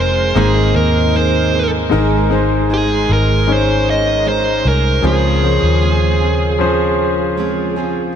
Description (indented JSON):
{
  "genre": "pop ballad",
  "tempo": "77 BPM",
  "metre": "4/4",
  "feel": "straight",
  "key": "Ab major",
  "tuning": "A4 = 441 Hz",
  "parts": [
    { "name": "dark smooth lead guitar", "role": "melody", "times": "0.0-7.7 s", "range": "Ab4 to Eb5", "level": "-18 LUFS", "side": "right 3 dB", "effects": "overdrive, diffuse ambient delay" },
    { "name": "warm concert grand piano", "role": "accompaniment", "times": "0.0-8.2 s", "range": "Ab2 to C5", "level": "-18 LUFS", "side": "left 4 dB", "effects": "none" },
    { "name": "picked steel-string acoustic guitar", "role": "arpeggios", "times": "0.0-8.2 s", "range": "Ab2 to Bb4", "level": "-22 LUFS", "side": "right 7 dB", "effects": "diffuse ambient delay" },
    { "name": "vintage muted fingered electric bass", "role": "bass", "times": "0.0-8.2 s", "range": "F1 to Eb2", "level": "-17 LUFS", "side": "equal", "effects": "none" }
  ],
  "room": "moderate huge ambient reverb, RT60 8.0 s",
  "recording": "dreamy mix soaked in reverb",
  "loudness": "-12 LUFS",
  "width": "side -8 dB against mid",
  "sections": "0.0-1.9 A section; 1.9-8.2 B section",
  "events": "none",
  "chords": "0.4 Abadd9; 1.9 Absus2; 5.0 Dbmaj7"
}